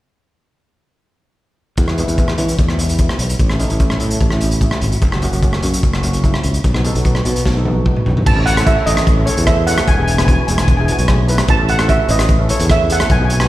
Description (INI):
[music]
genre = calypso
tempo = 148 BPM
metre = 4/4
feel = straight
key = E major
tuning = A4 = 439 Hz
[part]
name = modern bright fingered electric bass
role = bass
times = 1.8-13.5 s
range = E1 to E3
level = -17 LUFS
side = equal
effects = none
[part]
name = crunchy breakbeat drum kit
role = drums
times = 1.8-13.5 s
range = crash cymbal, hi-hat, kick drum, rim click, snare drum, toms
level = -16 LUFS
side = equal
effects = none
[part]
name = steel pan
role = accompaniment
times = 1.9-13.5 s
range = G#3 to B4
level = -24 LUFS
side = left 1 dB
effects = slapback echo
[part]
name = steel pan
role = melody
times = 8.3-13.5 s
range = C#5 to A5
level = -18 LUFS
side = right 2 dB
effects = slapback echo
[sound]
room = light reverb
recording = live gig heard through the venue's PA, recital hall reverb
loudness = -12 LUFS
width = side -15 dB against mid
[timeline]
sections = 1.8-8.3 A section; 8.3-13.5 B section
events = drum fill 7.5-8.3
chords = 1.8 E; 3.4 A; 5.0 F#7; 6.6 B; 8.3 A; 9.9 E; 11.5 A